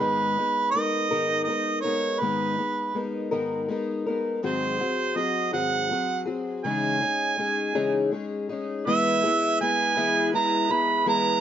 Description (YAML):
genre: acoustic folk duo or small band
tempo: 54 BPM (dotted quarters)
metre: 6/8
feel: straight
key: G# minor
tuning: A4 = 437 Hz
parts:
  - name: warm harmonica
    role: melody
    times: 0.0-11.4 s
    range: B4 to B5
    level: -24 LUFS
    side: right 4 dB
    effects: plate reverb
  - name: fingerpicked twelve-string acoustic guitar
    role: accompaniment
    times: 0.0-11.4 s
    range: G#2 to A#4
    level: -26 LUFS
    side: left 3 dB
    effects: none
  - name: bright tonewheel organ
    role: sustained chords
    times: 8.9-11.4 s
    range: G#3 to B4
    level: -35 LUFS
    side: equal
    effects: slow rotary speaker, overdrive
room: moderate studio reverb, RT60 0.8 s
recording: nothing above 7.4 kHz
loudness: -23 LUFS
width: side -10 dB against mid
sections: 0.0-8.9 A section; 8.9-11.4 B section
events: none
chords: 0.0 G#madd9; 4.4 G#7; 6.6 C#madd9; 8.9 E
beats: | 0.00 1.11 | 2.21 3.32 | 4.43 5.54 | 6.64 7.75 | 8.86 9.96 | 11.07